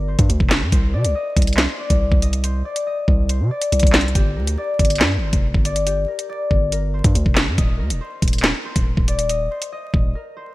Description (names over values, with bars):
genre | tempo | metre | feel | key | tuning
hip hop, drill | 140 BPM | 4/4 | half-time | unclear | A4 = 440 Hz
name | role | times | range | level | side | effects
concert harp | melody | 0.0-10.5 s | G4 to Eb5 | -25 LUFS | left 3 dB | low-pass filter, digital delay
long sustained 808-style bass | bass | 0.0-10.1 s | Eb1 to C3 | -20 LUFS | equal | none
drill drum kit | drums | 0.2-10.0 s | handclaps, hi-hat, kick drum, snare drum | -17 LUFS | equal | none
room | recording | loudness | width
little or no reverb | bright 1980s-style digital production, vinyl crackle | -16 LUFS | side -18 dB against mid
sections
0.0-10.5 A section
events
break 10.2-10.5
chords
0.0 G5; 0.7 Cmadd9; 4.2 G5; 7.6 Cm7/Eb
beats
0.29 | 0.72 1.15 1.58 2.01 | 2.44 2.87 3.29 3.72 | 4.15 4.58 5.01 5.44 | 5.87 6.29 6.72 7.15 | 7.58 8.01 8.44 8.87 | 9.29 9.72 10.15